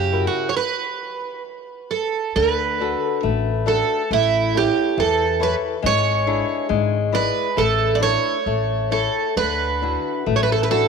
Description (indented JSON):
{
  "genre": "fado-style ballad",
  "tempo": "68 BPM",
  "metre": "2/4",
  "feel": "rubato",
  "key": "D major",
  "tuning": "A4 = 440 Hz",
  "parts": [
    { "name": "picked twelve-string acoustic guitar", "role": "melody", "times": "0.0-10.9 s", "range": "E4 to D5", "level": "-20 LUFS", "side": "right 7 dB", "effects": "none" },
    { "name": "flamenco guitar", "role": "accompaniment", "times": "0.0-10.9 s", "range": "C#3 to D5", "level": "-24 LUFS", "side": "left 13 dB", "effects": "none" },
    { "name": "upright bass", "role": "bass", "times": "0.0-10.8 s", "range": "G#1 to F#2", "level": "-25 LUFS", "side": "left 2 dB", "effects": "none" }
  ],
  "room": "moderate plate reverb, RT60 3.0 s",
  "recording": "1960s-style stereo with parts hard left and right",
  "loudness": "-18 LUFS",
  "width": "side -5 dB against mid",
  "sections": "0.0-2.4 A section; 2.4-10.9 B section",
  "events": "stop 0.6-2.4",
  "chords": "0.0 F#7; 0.6 N.C.; 2.4 D; 4.1 A; 5.8 E7/G#; 7.6 Asus4; 8.5 A; 9.4 Dadd9"
}